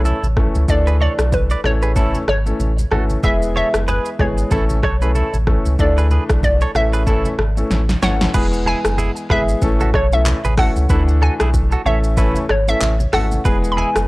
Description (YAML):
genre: afrobeats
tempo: 94 BPM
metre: 4/4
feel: swing 58% on 16ths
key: unclear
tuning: A4 = 440 Hz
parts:
  - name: hollow square pluck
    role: melody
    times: 0.0-14.1 s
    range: B4 to B5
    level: -22 LUFS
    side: equal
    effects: chorus, analog delay
  - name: warm baby grand piano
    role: accompaniment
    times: 0.0-14.1 s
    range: E3 to A4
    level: -23 LUFS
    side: left 2 dB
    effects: none
  - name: warm sub bass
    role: bass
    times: 0.0-14.1 s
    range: E1 to D2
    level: -18 LUFS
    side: equal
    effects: none
  - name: congas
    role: percussion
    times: 0.0-13.9 s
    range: none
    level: -29 LUFS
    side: equal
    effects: none
  - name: direct-recorded clean electric guitar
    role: riff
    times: 0.1-13.9 s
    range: E4 to E5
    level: -26 LUFS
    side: right 3 dB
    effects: none
  - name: deep house drum kit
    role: drums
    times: 0.1-14.1 s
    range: crash cymbal, handclaps, hi-hat, kick drum, rim click, shaker, snare drum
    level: -20 LUFS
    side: equal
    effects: overdrive
room: digital ambience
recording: dry, gritty hardware recording, transformer saturation, cassette tape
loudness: -14 LUFS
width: side -21 dB against mid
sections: 0.0-8.3 A section; 8.3-14.1 B section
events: drum fill 7.7-8.3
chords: 0.0 A; 0.7 Dsus2; 1.6 A; 3.2 E; 4.5 A; 5.8 Dsus2; 6.7 A; 8.3 E; 9.6 A; 10.9 Dsus2; 11.9 A; 13.5 E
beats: 0.05 | 0.69 1.32 1.96 2.60 | 3.24 3.88 4.51 5.15 | 5.79 6.43 7.07 7.71 | 8.35 8.98 9.62 10.26 | 10.90 11.54 12.17 12.81 | 13.45